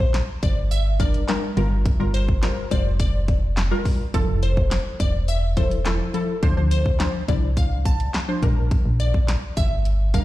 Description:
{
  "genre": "dance-pop",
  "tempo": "105 BPM",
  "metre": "4/4",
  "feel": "straight",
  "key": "unclear",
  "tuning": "A4 = 445 Hz",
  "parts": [
    { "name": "glassy wavetable pluck", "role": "melody", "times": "0.0-10.2 s", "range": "C5 to A5", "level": "-30 LUFS", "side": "left 2 dB", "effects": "chorus, tape echo" },
    { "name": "punchy chord stab", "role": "accompaniment", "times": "0.0-10.2 s", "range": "F3 to C5", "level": "-27 LUFS", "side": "left 2 dB", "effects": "chorus" },
    { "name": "solid FM bass", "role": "bass", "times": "0.0-10.2 s", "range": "E1 to D2", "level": "-22 LUFS", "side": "equal", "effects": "sidechain pumping" },
    { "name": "house drum kit", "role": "drums", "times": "0.0-10.2 s", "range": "handclaps, hi-hat, kick drum, snare drum", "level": "-22 LUFS", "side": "equal", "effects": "none" }
  ],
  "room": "little or no reverb",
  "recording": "played on a big sound system in a bare room, large studio reverb",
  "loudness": "-19 LUFS",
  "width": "side -16 dB against mid",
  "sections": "0.0-10.2 A section",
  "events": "none",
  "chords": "0.0 Bb6; 1.6 Gm7; 4.1 Fmaj7; 6.4 Dm7; 8.4 Bb6"
}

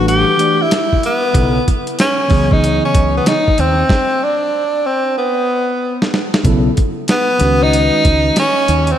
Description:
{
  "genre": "hip hop, jazz-hop",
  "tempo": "94 BPM",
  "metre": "4/4",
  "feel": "swing 64% on 16ths",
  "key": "unclear",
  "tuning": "A4 = 442 Hz",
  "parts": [
    { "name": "clear tenor saxophone", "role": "melody", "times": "0.0-9.0 s", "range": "B3 to G4", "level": "-14 LUFS", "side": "equal", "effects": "tape echo" },
    { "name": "tine electric piano", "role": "accompaniment", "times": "0.0-8.5 s", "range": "C#3 to D5", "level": "-19 LUFS", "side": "equal", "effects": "medium stereo tremolo" },
    { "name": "woody fretless electric bass", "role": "bass", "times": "0.0-8.9 s", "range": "A1 to D#2", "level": "-17 LUFS", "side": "equal", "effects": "ensemble chorus" },
    { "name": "dusty soul sampler-style drum kit", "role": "drums", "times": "0.1-9.0 s", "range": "hi-hat, kick drum, snare drum", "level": "-17 LUFS", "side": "equal", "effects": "none" }
  ],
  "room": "moderate lush hall reverb, RT60 1.9 s",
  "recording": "dreamy mix soaked in reverb",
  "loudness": "-12 LUFS",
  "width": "side -10 dB against mid",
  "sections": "0.0-6.4 A section; 6.4-9.0 B section",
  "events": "stop 3.9-6.4; drum fill 5.2-6.4",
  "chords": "0.0 Asus2; 1.3 Bsus2; 2.3 C#m9; 3.9 N.C.; 6.4 Bsus2; 7.4 C#sus2"
}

